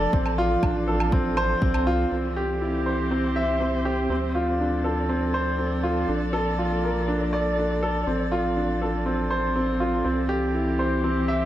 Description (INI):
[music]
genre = piano and strings electronica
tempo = 121 BPM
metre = 4/4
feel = straight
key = unclear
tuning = A4 = 441 Hz
[part]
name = dark string quartet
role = sustained chords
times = 0.0-11.5 s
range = E3 to D5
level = -29 LUFS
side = right 1 dB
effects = sidechain pumping
[part]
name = warm grand piano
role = riff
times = 0.0-11.5 s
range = C4 to E5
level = -24 LUFS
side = equal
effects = tape echo
[part]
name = round analog bass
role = bass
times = 0.0-11.5 s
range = A1 to D2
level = -29 LUFS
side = equal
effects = sidechain pumping
[part]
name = electronic kick drum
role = drums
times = 0.1-1.7 s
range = none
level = -25 LUFS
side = equal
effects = overdrive
[part]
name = woodblock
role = drums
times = 0.3-1.8 s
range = none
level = -33 LUFS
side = right 3 dB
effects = overdrive, low-pass filter on perc, low-pass filter on room
[sound]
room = moderate lush hall reverb, RT60 1.6 s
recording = none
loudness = -22 LUFS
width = side -13 dB against mid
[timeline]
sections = 0.0-2.1 A section; 2.1-11.5 B section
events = none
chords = 0.1 F6/A; 2.1 C; 4.1 Dm7; 6.1 Bbmaj7; 8.1 F6/A; 10.1 C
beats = | 0.13 0.63 1.12 1.62 | 2.12 2.61 3.11 3.60 | 4.10 4.60 5.09 5.59 | 6.08 6.58 7.08 7.57 | 8.07 8.56 9.06 9.55 | 10.05 10.55 11.04